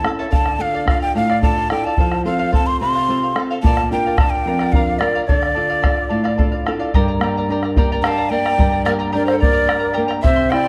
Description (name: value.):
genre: andean folk, Andean ensemble.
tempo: 73 BPM (dotted quarters).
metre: 6/8.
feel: straight.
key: unclear.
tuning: A4 = 441 Hz.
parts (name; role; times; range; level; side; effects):
breathy mellow quena; melody; 0.0-10.7 s; C5 to C6; -22 LUFS; equal; none.
charango; accompaniment; 0.0-10.7 s; E4 to C6; -27 LUFS; equal; none.
flamenco guitar; accompaniment; 0.0-10.7 s; F2 to Bb4; -24 LUFS; equal; none.
bombo; percussion; 0.0-10.6 s; none; -21 LUFS; equal; none.
breathy bright polished pan flute; second line; 8.0-10.7 s; A4 to F5; -26 LUFS; equal; none.
room: moderate recital hall reverb, RT60 1.2 s.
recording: dark, warm production.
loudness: -17 LUFS.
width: mono.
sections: 0.0-6.9 A section; 6.9-10.7 B section.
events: none.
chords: 0.3 Dm; 2.0 F; 3.6 Bb; 5.3 Dm; 6.9 Gm.